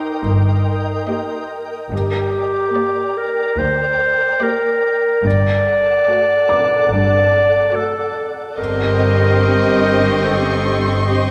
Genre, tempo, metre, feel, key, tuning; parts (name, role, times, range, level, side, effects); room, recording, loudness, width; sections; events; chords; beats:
cinematic; 72 BPM; 4/4; straight; G harmonic minor; A4 = 440 Hz
rich chamber violin section; melody; 0.0-11.3 s; D5 to Eb5; -28 LUFS; equal
clear clarinet; second line; 0.0-11.3 s; Eb4 to D5; -19 LUFS; equal
rich chamber viola section; accompaniment; 0.0-11.3 s; A3 to G4; -24 LUFS; equal
flickering grainy texture; sustained chords; 0.0-11.3 s; C4 to G5; -27 LUFS; equal; built-in reverb
felt-muted upright piano; texture; 0.0-11.3 s; D6; -31 LUFS; equal
rich chamber violin section; texture; 0.0-1.5, 8.6-11.3 s; C6 to D6; -30 LUFS; equal
clear symphonic cello section; bass; 0.2-11.3 s; D2 to G2; -24 LUFS; equal
clear symphonic double bass section; bass; 0.2-11.3 s; G1 to D2; -23 LUFS; equal
wet scoring stage reverb, RT60 1.8 s; -16 LUFS; mono
0.0-11.3 A section
0.0 Eb/G; 1.9 Gm; 5.2 D/G; 8.6 Cm/G
0.25 1.08 | 1.92 2.75 3.58 4.42 | 5.25 6.08 6.92 7.75 | 8.58 9.42 10.25 11.08